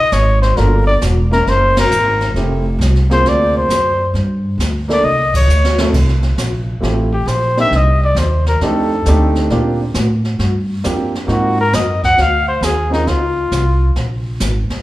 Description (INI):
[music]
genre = jazz, small-group swing and bop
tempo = 134 BPM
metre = 4/4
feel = swing 68% on 8ths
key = F major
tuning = A4 = 441 Hz
[part]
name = breathy trumpet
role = melody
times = 0.0-14.0 s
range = Eb4 to Gb5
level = -16 LUFS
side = left 1 dB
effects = none
[part]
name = upright bass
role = bass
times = 0.1-14.7 s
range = E1 to Bb2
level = -16 LUFS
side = equal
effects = none
[part]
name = jazz brush drum kit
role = drums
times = 0.1-14.8 s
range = brushed snare drum, crash cymbal, hi-hat, kick drum, ride cymbal, snare drum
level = -22 LUFS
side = equal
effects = none
[part]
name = warm concert grand piano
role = accompaniment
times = 0.6-13.1 s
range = F2 to Bb4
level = -20 LUFS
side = right 2 dB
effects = none
[sound]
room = moderate recital hall reverb, RT60 1.5 s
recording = recorded in a church or concert hall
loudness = -12 LUFS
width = side -16 dB against mid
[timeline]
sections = 0.0-5.9 A section; 5.9-14.8 B section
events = band accent 1.7, 5.3; drum fill 5.0-5.9; trumpet solo 5.9-14.8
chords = 0.0 Dbmaj7sus2; 0.6 Gm9; 1.5 Gb9; 2.4 Fmaj9; 3.2 D7alt; 4.1 Gm; 5.0 C69; 5.9 Fmaj9; 7.7 Cm; 8.6 F13; 9.5 Bb69; 11.3 Ab13; 13.1 Dbmaj7